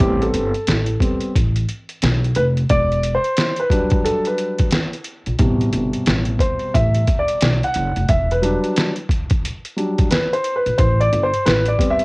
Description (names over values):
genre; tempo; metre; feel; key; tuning
hip hop, jazz-hop; 89 BPM; 4/4; swing 62% on 16ths; unclear; A4 = 440 Hz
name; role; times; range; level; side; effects
dark concert grand piano; accompaniment; 0.0-12.0 s; B2 to F#5; -19 LUFS; equal; none
upright bass; bass; 0.0-11.7 s; E1 to B1; -19 LUFS; equal; none
trip hop sampler-style drum kit; drums; 0.0-12.0 s; hi-hat, kick drum, snare drum; -19 LUFS; equal; overdrive, cassette tape
room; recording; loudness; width
studio ambience; home recording on cassette; -16 LUFS; side -26 dB against mid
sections
0.0-12.0 A section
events
grand piano solo 0.0-12.0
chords
0.0 Am9; 2.7 Em9; 5.4 Am9; 8.1 Em9; 10.8 Am9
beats
| 0.00 0.68 1.35 2.02 | 2.70 3.37 4.05 4.72 | 5.39 6.07 6.74 7.42 | 8.09 8.77 9.44 10.11 | 10.79 11.46